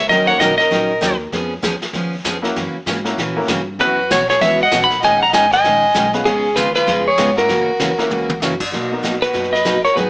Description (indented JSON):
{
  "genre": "country, western swing",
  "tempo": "195 BPM",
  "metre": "4/4",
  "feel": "swing 61% on 8ths",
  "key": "B major",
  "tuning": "A4 = 440 Hz",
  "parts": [
    { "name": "clean lap steel guitar", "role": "melody", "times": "0.0-1.2, 3.8-10.1 s", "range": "G#4 to B5", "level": "-14 LUFS", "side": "equal", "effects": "none" },
    { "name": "clear fiddle", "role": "second line", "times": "0.0-1.2, 3.8-10.1 s", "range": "C#4 to F#5", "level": "-21 LUFS", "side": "equal", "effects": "none" },
    { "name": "upright bass", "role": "bass", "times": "0.0-10.1 s", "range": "G#1 to A#2", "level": "-30 LUFS", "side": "equal", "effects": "none" },
    { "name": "picked steel-string acoustic guitar", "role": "accompaniment", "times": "0.1-10.1 s", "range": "B2 to A#4", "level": "-21 LUFS", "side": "equal", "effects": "none" },
    { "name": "vintage brush drum kit", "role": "drums", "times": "0.1-10.1 s", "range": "brushed snare drum, crash cymbal, hi-hat, kick drum, snare drum, toms", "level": "-23 LUFS", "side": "equal", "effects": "none" },
    { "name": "bright upright piano", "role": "accompaniment", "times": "0.3-4.0, 6.1-10.1 s", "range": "A#3 to B4", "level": "-23 LUFS", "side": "left 1 dB", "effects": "none" }
  ],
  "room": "moderate studio reverb, RT60 0.8 s",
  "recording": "small speaker sound",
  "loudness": "-13 LUFS",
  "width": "side -27 dB against mid",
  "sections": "0.0-8.7 A section; 8.7-10.1 B section",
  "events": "drum fill 8.1-8.4",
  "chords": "0.1 D#m7; 1.3 C#7; 2.6 F#7; 3.8 F#7sus4; 5.0 D#7sus4; 6.3 C#7; 7.5 F#7; 8.7 Bmaj7"
}